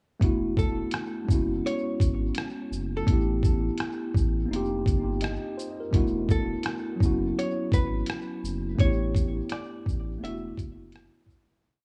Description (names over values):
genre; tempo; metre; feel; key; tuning
lo-fi hip hop; 84 BPM; 4/4; swing 64% on 16ths; E dorian; A4 = 440 Hz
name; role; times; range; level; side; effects
mellow tine electric piano; accompaniment; 0.2-11.7 s; F#3 to Eb5; -32 LUFS; equal; cassette tape, low-pass filter, tape echo
saturated sub bass; bass; 0.2-11.1 s; E1 to A1; -34 LUFS; equal; none
lo-fi sampler-style drum kit; drums; 0.2-11.5 s; hi-hat, kick drum, rim click, shaker; -28 LUFS; equal; vintage 12-bit sampler grit
archtop guitar, miked and amplified; melody; 0.6-11.3 s; A4 to E5; -38 LUFS; equal; low-pass filter, tape echo
room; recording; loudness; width
light reverb, digital ambience; echo-heavy mix; -27 LUFS; mono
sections
0.2-11.6 A section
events
fade-out 8.8-11.6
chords
0.2 E9sus4; 1.3 F#9sus4; 3.1 A9sus4; 4.5 F9sus4; 5.9 E9sus4; 7.0 F#9sus4; 8.8 A9sus4; 10.2 E9sus4